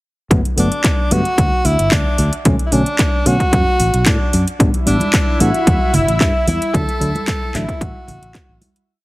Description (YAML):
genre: nu-disco, nu disco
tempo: 112 BPM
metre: 4/4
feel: straight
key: unclear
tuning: A4 = 439 Hz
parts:
  - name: tine electric piano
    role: accompaniment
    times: 0.3-7.6 s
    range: D3 to D4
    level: -20 LUFS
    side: equal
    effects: none
  - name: fingered electric bass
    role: bass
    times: 0.3-8.6 s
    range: G1 to B2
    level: -18 LUFS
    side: equal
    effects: tube saturation
  - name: electronic kick drum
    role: drums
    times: 0.3-8.5 s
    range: none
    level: -17 LUFS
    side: equal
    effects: overdrive
  - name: house drum kit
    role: drums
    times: 0.3-8.9 s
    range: handclaps, hi-hat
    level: -22 LUFS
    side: equal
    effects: overdrive
  - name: clear tenor saxophone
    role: melody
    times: 0.6-8.6 s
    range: D4 to A4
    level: -20 LUFS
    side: equal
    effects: tape echo
  - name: lush unison pad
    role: sustained chords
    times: 4.6-8.9 s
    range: E4 to E5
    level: -25 LUFS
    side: left 1 dB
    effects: chorus, sidechain pumping
  - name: congas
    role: percussion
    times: 5.0-8.7 s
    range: none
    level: -24 LUFS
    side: right 2 dB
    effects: none
room: light reverb, digital ambience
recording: heavily compressed radio sound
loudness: -13 LUFS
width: side -19 dB against mid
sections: 0.3-8.9 groove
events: fade-out 6.0-8.9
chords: 0.3 Gmaj7; 2.5 Bm7; 4.6 A7sus4; 6.7 D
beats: | 0.31 0.85 1.38 1.92 | 2.46 2.99 3.53 4.06 | 4.60 5.13 5.67 6.21 | 6.74 7.28 7.81 8.35